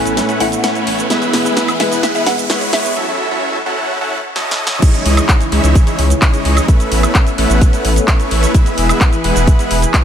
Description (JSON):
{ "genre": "EDM, festival progressive house", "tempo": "129 BPM", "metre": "4/4", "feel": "straight", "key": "C# minor", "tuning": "A4 = 438 Hz", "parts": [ { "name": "mallet-like synth pluck", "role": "melody", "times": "0.0-2.9 s", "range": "E5 to G#5", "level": "-22 LUFS", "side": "equal", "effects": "ensemble chorus, tape echo" }, { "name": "dark concert grand piano", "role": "accompaniment", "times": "0.0-3.0 s", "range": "A2 to E5", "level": "-23 LUFS", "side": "left 3 dB", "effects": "sidechain pumping, tape echo" }, { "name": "lush unison pad", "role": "sustained chords", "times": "0.0-10.0 s", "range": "C#3 to B4", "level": "-21 LUFS", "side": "left 1 dB", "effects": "chorus, sidechain pumping" }, { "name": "big supersaw lead", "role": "riff", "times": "0.0-10.0 s", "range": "F#3 to F#5", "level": "-18 LUFS", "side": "equal", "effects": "sidechain pumping, low-pass filter, tape echo" }, { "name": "riser", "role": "sound effects", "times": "0.0-3.0 s", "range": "none", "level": "-26 LUFS", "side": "right 1 dB", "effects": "none" }, { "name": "saturated sub bass", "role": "bass", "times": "0.1-9.9 s", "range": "E1 to C#2", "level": "-15 LUFS", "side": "equal", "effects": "sidechain pumping" }, { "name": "house drum kit", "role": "drums", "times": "0.1-10.0 s", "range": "crash cymbal, handclaps, hi-hat, shaker, snare drum, woodblock", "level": "-19 LUFS", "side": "equal", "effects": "none" }, { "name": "electronic kick drum", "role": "drums", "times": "4.8-10.0 s", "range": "none", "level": "-11 LUFS", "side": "equal", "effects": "none" } ], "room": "light reverb", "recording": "high-pass filter", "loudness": "-11 LUFS", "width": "side -9 dB against mid", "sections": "0.0-4.8 A section; 4.8-10.0 B section", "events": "build-up 0.0-4.8; drum fill 0.0-3.0, 4.4-4.8; riser 0.0-3.0; filter sweep on analog synth pad 0.0-4.8; break 3.0-4.8; drop 4.8-10.0", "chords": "0.0 Aadd9; 1.1 E; 3.0 F#m7; 4.8 C#madd9; 6.7 Aadd9; 8.5 E" }